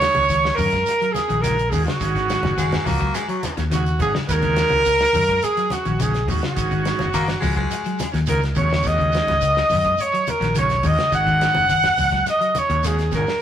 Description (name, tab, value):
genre	afrobeat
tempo	105 BPM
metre	4/4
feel	straight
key	unclear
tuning	A4 = 442 Hz
part	bright alto saxophone	melody	0.0-13.4 s	Gb4 to Gb5	-21 LUFS	equal	none
part	bright trumpet	second line	0.0-13.4 s	Gb4 to Gb5	-23 LUFS	right 3 dB	none
part	combo organ	accompaniment	0.0-13.3 s	Eb3 to Gb4	-28 LUFS	right 3 dB	none
part	clean electric guitar	arpeggios	0.0-13.2 s	C3 to Ab3	-28 LUFS	left 3 dB	spring reverb
part	fingered electric bass	bass	0.0-13.2 s	Gb1 to Gb2	-24 LUFS	equal	none
part	damped 70s drum kit	drums	0.0-13.4 s	hi-hat, kick drum, snare drum	-29 LUFS	equal	none
part	shekere	percussion	0.0-13.4 s	none	-36 LUFS	right 3 dB	none
part	congas	percussion	0.1-13.3 s	none	-30 LUFS	left 1 dB	none
part	raspy baritone saxophone	second line	2.6-3.6, 7.1-8.1 s	Gb3 to Bb3	-25 LUFS	left 3 dB	none
room	moderate stone room reverb, RT60 1.1 s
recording	rough rehearsal-room recording, tube saturation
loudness	-17 LUFS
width	side -10 dB against mid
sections	0.0-13.4 A section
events	none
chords	0.0 Ebm7; 2.0 Ab7sus4; 4.3 Ebm7; 6.6 Ab7sus4; 8.9 Ebm7; 11.1 Ab7sus4